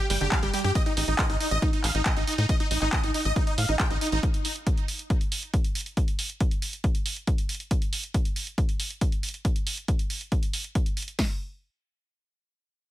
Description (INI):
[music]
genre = uplifting trance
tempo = 138 BPM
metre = 4/4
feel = straight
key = unclear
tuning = A4 = 440 Hz
[part]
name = big supersaw lead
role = melody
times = 0.0-4.2 s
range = Eb4 to G5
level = -29 LUFS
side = right 1 dB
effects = phaser, cassette tape, sidechain pumping, ping-pong delay
[part]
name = analog pluck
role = arpeggios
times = 0.0-0.7 s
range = D3 to G4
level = -33 LUFS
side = right 3 dB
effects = chorus, sidechain pumping, ping-pong delay
[part]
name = tight sequencer bass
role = bass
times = 0.1-4.2 s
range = G1 to A2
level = -27 LUFS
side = equal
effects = tube saturation, sidechain pumping
[part]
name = punchy analog drum machine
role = drums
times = 0.1-11.2 s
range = handclaps, hi-hat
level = -31 LUFS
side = right 1 dB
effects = sidechain pumping on hats, sidechain pumping on cymbals
[part]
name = punchy analog drum machine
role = drums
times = 0.3-11.3 s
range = hi-hat, kick drum, snare drum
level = -26 LUFS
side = equal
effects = none
[sound]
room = little or no reverb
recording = none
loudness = -24 LUFS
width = side -14 dB against mid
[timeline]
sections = 0.0-11.2 A section; 11.2-12.9 B section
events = none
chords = 0.0 G5; 0.8 F7/A (rootless); 4.2 N.C.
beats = 0.32 | 0.75 1.19 1.62 2.06 | 2.49 2.93 3.36 3.80 | 4.23 4.67 5.10 5.54 | 5.97 6.41 6.84 7.27 | 7.71 8.14 8.58 9.01 | 9.45 9.88 10.32 10.75 | 11.19